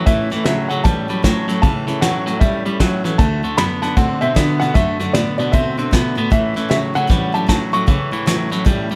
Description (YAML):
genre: rockabilly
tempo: 154 BPM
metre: 4/4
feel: swing 63% on 8ths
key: A mixolydian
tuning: A4 = 441 Hz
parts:
  - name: picked steel-string acoustic guitar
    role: accompaniment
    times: 0.0-9.0 s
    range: A2 to F#4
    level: -29 LUFS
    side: equal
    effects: none
  - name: electric guitar at the edge of break-up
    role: riff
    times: 0.0-9.0 s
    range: A2 to C4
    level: -25 LUFS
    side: equal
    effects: none
  - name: dark cello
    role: bass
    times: 0.0-9.0 s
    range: D2 to A3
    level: -24 LUFS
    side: equal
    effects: none
  - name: dark upright piano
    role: melody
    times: 0.1-8.5 s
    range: D5 to C#6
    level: -25 LUFS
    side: equal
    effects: none
  - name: soft brush drum kit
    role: drums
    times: 0.1-9.0 s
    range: hi-hat, kick drum, snare drum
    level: -20 LUFS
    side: equal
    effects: none
room: light reverb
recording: none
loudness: -17 LUFS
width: mono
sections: 0.0-9.0 A section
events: none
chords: 0.0 A; 3.2 D; 6.3 A